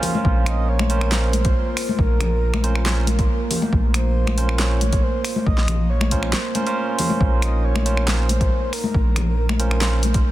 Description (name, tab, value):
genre	deep dubstep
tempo	138 BPM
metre	4/4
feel	half-time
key	Bb minor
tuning	A4 = 439 Hz
part	breathy flute-like synth lead	melody	0.0-10.0 s	Bb4 to Eb5	-30 LUFS	equal	wide subtle chorus, dub echo
part	dark analog pad	sustained chords	0.0-10.3 s	Bb3 to F5	-30 LUFS	right 4 dB	lush chorus
part	barky tine electric piano	stabs	0.0-10.0 s	Db4 to C5	-28 LUFS	right 4 dB	overdrive, dub echo
part	deep house drum kit	drums	0.0-10.2 s	finger snaps, handclaps, hi-hat, snare drum	-27 LUFS	equal	soft clipping on snare
part	congas	percussion	0.0-10.1 s	none	-27 LUFS	left 5 dB	none
part	electronic kick drum	drums	0.2-10.2 s	none	-20 LUFS	equal	none
part	soft dub sub bass	bass	0.3-10.2 s	Bb1	-20 LUFS	equal	none
room	little or no reverb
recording	dense, heavily limited modern master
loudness	-17 LUFS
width	side -15 dB against mid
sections	0.0-10.3 A section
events	kick drops out 6.3-7.2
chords	0.0 Bbmadd9